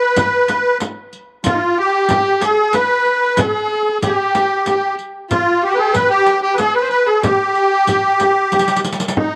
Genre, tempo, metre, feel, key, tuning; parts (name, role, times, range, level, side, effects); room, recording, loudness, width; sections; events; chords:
Persian modal ensemble; 93 BPM; 3/4; straight; G dastgah homayun; A4 = 440 Hz
musette accordion; melody; 0.0-9.4 s; Eb4 to C5; -17 LUFS; equal
warm violin; second line; 0.0-9.4 s; Eb4 to B4; -23 LUFS; equal
frame drum; percussion; 0.2-9.3 s; -24 LUFS; equal
riq; percussion; 0.2-9.2 s; -27 LUFS; equal
moderate spring reverb, RT60 2.0 s; -16 LUFS; mono
0.0-9.2 A section
drum fill 8.5-9.2